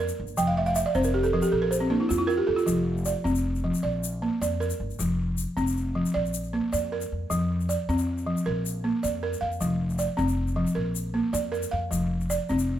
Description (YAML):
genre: west african traditional, West African string and xylophone music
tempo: 104 BPM (dotted quarters)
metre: 12/8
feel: straight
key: unclear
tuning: A4 = 440 Hz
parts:
  - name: balafon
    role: arpeggios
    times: 0.0-12.8 s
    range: F3 to G5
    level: -25 LUFS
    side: right 1 dB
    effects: none
  - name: upright bass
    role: bass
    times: 0.0-12.8 s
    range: F1 to F2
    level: -31 LUFS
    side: left 1 dB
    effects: none
  - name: egg shaker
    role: percussion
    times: 0.1-12.7 s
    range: none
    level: -38 LUFS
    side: left 8 dB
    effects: none
room: light reverb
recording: none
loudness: -24 LUFS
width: side -11 dB against mid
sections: 0.0-7.3 A section; 7.3-12.8 B section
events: balafon fill 0.4-2.7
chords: 0.4 F5; 1.5 Bb5; 2.7 F5; 3.8 Bb; 5.0 F5; 6.2 Bb; 7.3 F5; 8.5 Bb; 9.6 F5; 10.8 Bb; 11.9 F5